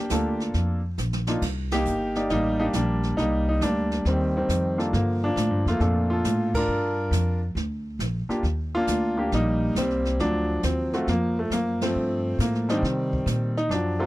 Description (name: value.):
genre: jazz piano trio.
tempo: 137 BPM.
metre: 4/4.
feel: swing 68% on 8ths.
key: G minor.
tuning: A4 = 439 Hz.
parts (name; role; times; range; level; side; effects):
clear grand piano; melody; 0.0-14.1 s; Bb2 to D5; -24 LUFS; equal; none.
upright bass; bass; 0.1-14.1 s; G1 to C3; -26 LUFS; equal; none.
jazz brush drum kit; drums; 0.1-14.1 s; brushed snare drum, crash cymbal, hi-hat, kick drum, ride cymbal, snare drum; -33 LUFS; right 1 dB; none.
room: small room ambience.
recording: none.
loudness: -22 LUFS.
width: side -17 dB against mid.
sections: 0.0-14.1 A section.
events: drum fill 1.0-1.4; band accent 1.6, 6.5, 11.7.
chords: 0.0 Gm9; 1.4 Cm9; 4.9 Gm9; 8.4 Ebmaj7; 10.2 D7#9; 12.0 Gm9; 12.8 Cm7.